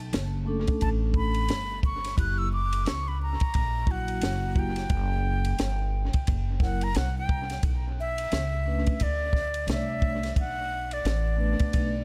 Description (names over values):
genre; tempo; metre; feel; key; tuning
hip hop, jazz-hop; 88 BPM; 4/4; swing 60% on 16ths; B minor; A4 = 440 Hz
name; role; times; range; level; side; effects
upright bass; bass; 0.0-12.0 s; F#1 to D2; -31 LUFS; equal; none
compact cocktail drum kit; drums; 0.1-11.9 s; hi-hat, kick drum, ride cymbal, snare drum; -31 LUFS; equal; analog delay
vibraphone with soft mallets; accompaniment; 0.5-11.9 s; F#3 to D5; -36 LUFS; equal; analog delay
breathy concert flute; melody; 0.8-12.0 s; D5 to F#6; -34 LUFS; equal; analog delay
room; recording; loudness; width
small room ambience; echo-heavy mix; -27 LUFS; mono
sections
0.0-7.6 A section; 7.6-12.0 B section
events
flute solo 0.0-7.6; vibraphone fill 11.7-12.0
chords
0.0 Bm9; 2.2 F#7b9; 7.6 Bm9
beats
0.13 0.81 1.50 | 2.18 2.86 3.54 4.22 | 4.91 5.59 6.27 6.95 | 7.63 8.31 9.00 9.68 | 10.36 11.04 11.72